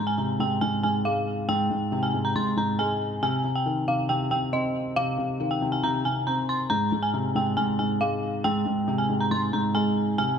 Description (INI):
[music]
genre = hip hop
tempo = 138 BPM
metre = 4/4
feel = half-time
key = unclear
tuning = A4 = 441 Hz
[part]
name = dark detuned synth bell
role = melody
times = 0.0-10.4 s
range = Eb5 to C6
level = -26 LUFS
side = equal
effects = chorus, tape echo
[part]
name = dark concert grand piano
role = accompaniment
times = 0.0-10.4 s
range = Ab2 to C4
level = -26 LUFS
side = equal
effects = none
[sound]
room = light reverb, studio reverb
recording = nothing above 10.4 kHz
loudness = -23 LUFS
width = side -7 dB against mid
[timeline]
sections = 0.0-10.4 A section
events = none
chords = 0.0 Ab; 3.2 Cm; 6.7 Ab